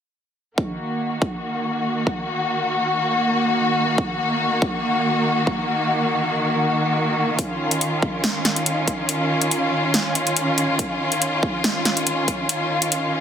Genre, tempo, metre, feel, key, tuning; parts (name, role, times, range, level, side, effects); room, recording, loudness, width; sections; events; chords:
heavy wobble dubstep; 141 BPM; 4/4; swing 54% on 16ths, half-time; Eb minor; A4 = 440 Hz
rich symphonic string section; sustained chords; 0.6-13.2 s; Eb3 to Gb4; -20 LUFS; equal; sidechain pumping, low-pass filter
electronic kick drum; drums; 0.6-12.4 s; -24 LUFS; right 1 dB; high-pass filter on kick, small room reverb
big-room dance drum kit; drums; 7.4-13.0 s; hi-hat, snare drum; -21 LUFS; equal; small room reverb
moderate plate reverb, RT60 2.0 s; dense, heavily limited modern master; -19 LUFS; side -8 dB against mid
0.6-13.2 A section
0.6 Ebm; 7.4 Dbadd9